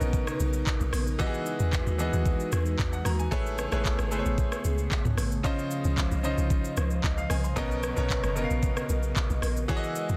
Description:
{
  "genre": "amapiano",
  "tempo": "113 BPM",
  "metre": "4/4",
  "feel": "straight",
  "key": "unclear",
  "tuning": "A4 = 440 Hz",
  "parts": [
    { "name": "bright baby grand piano", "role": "accompaniment", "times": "0.0-10.2 s", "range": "Cb3 to C6", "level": "-35 LUFS", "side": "equal", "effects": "none" },
    { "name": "airy breathy pad", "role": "sustained chords", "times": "0.0-10.2 s", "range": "Db3 to Eb5", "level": "-37 LUFS", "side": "equal", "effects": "chorus, sidechain pumping" },
    { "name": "deep log drum bass", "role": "bass", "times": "0.0-10.2 s", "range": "Gb1 to E2", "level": "-31 LUFS", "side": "equal", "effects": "none" },
    { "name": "afro-pop drum kit", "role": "drums", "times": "0.0-10.2 s", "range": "handclaps, hi-hat, kick drum, rim click, shaker, toms", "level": "-32 LUFS", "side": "equal", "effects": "none" }
  ],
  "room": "little or no reverb",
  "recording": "dense, heavily limited modern master",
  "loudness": "-28 LUFS",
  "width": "mono",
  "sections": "0.0-10.2 A section",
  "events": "none",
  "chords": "0.0 Cbmaj9; 1.2 Emaj9; 3.3 Amaj9; 5.4 Dbmaj9; 7.6 Cbmaj9",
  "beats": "0.14 0.67 | 1.20 1.73 2.26 2.79 | 3.32 3.85 4.38 4.91 | 5.45 5.98 6.51 7.04 | 7.57 8.10 8.63 9.16 | 9.69"
}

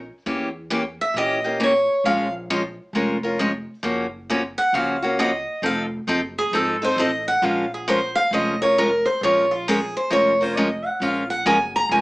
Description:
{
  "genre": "acoustic string swing (jazz manouche)",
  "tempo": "134 BPM",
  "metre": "4/4",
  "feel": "swing 64% on 8ths",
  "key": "Bb minor",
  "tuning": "A4 = 440 Hz",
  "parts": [
    { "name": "upright bass", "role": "bass", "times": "0.0-12.0 s", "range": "F1 to Bb2", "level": "-33 LUFS", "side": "equal", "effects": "none" },
    { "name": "picked steel-string acoustic guitar", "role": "accompaniment", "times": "0.3-12.0 s", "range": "Db3 to Bb4", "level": "-22 LUFS", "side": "equal", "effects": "none" },
    { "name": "picked steel-string acoustic guitar", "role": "melody", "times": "1.0-12.0 s", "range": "F4 to Bb5", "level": "-20 LUFS", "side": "equal", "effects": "none" }
  ],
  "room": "moderate small room reverb, RT60 0.6 s",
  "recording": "small speaker sound",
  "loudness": "-19 LUFS",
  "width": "side -21 dB against mid",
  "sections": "0.0-11.0 A section; 11.0-12.0 A section",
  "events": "steel-string acoustic guitar solo 0.0-12.0",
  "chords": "0.3 Edim7; 2.0 Bbm7; 3.8 Gbmaj7; 5.6 F7#9; 7.4 Bbm7",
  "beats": "| 0.26 0.71 1.16 1.60 | 2.05 2.50 2.94 3.39 | 3.84 4.29 4.74 5.18 | 5.63 6.08 6.53 6.98 | 7.42 7.87 8.32 8.77 | 9.21 9.66 10.11 10.56 | 11.00 11.45 11.90"
}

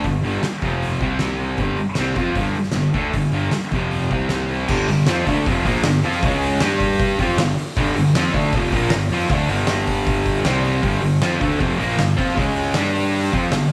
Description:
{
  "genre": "garage rock duo or trio",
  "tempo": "156 BPM",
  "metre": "4/4",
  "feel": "straight",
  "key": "unclear",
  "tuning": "A4 = 440 Hz",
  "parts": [
    { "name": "fuzz guitar", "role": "riff", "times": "0.0-13.7 s", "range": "F2 to G4", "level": "-22 LUFS", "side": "equal", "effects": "distortion" },
    { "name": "fuzz picked electric bass", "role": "bass", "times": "0.0-13.7 s", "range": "F1 to G2", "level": "-28 LUFS", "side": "equal", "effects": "overdrive" },
    { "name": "oversized low-tuned drum kit", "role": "drums", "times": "0.0-13.6 s", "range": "crash cymbal, hi-hat, kick drum, snare drum", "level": "-26 LUFS", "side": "equal", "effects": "none" }
  ],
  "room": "light reverb, small room ambience",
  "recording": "none",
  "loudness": "-20 LUFS",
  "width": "mono",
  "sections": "0.0-4.7 A section; 4.7-10.8 B section; 10.8-13.7 C section",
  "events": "none",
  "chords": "0.0 G5; 0.6 F5; 1.0 C5; 1.6 G5; 3.7 F5; 4.1 C5; 4.7 G5; 6.2 C#5; 6.6 G5; 10.4 C5; 10.8 G5; 12.4 C#5; 12.8 G5",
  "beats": "| 0.04 0.43 0.82 1.21 | 1.59 1.98 2.37 2.76 | 3.14 3.53 3.92 4.30 | 4.69 5.07 5.46 5.84 | 6.23 6.61 6.99 7.38 | 7.76 8.14 8.53 8.91 | 9.29 9.68 10.06 10.45 | 10.83 11.21 11.60 11.98 | 12.37 12.75 13.13 13.52"
}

